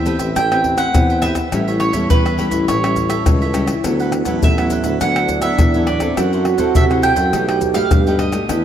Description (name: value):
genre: samba and choro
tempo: 103 BPM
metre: 4/4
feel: straight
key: unclear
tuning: A4 = 440 Hz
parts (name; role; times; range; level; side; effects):
- mandolin; melody; 0.0-8.5 s; B4 to G5; -20 LUFS; right 2 dB; diffuse ambient delay
- cavaquinho; accompaniment; 0.0-8.6 s; D4 to G5; -28 LUFS; right 5 dB; none
- nylon-string guitar; accompaniment; 0.0-8.6 s; A2 to B4; -22 LUFS; left 3 dB; none
- mellow tuba; bass; 0.0-8.6 s; A1 to C3; -20 LUFS; equal; none
- maracas, pandeiro, surdo and tamborim; percussion; 0.1-8.6 s; none; -18 LUFS; left 1 dB; none
- breathy trombone; second line; 3.8-8.6 s; B3 to G4; -21 LUFS; right 9 dB; diffuse ambient delay
room: moderate plate reverb, RT60 3.0 s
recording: dreamy mix soaked in reverb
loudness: -14 LUFS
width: side -10 dB against mid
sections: 0.0-8.6 A section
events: none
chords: 0.0 Am9; 1.5 A7; 3.9 D69; 6.2 F#m7b5; 7.3 B7alt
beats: 0.37 0.95 | 1.53 2.11 2.69 3.27 | 3.85 4.43 5.01 5.59 | 6.18 6.76 7.34 7.92 | 8.50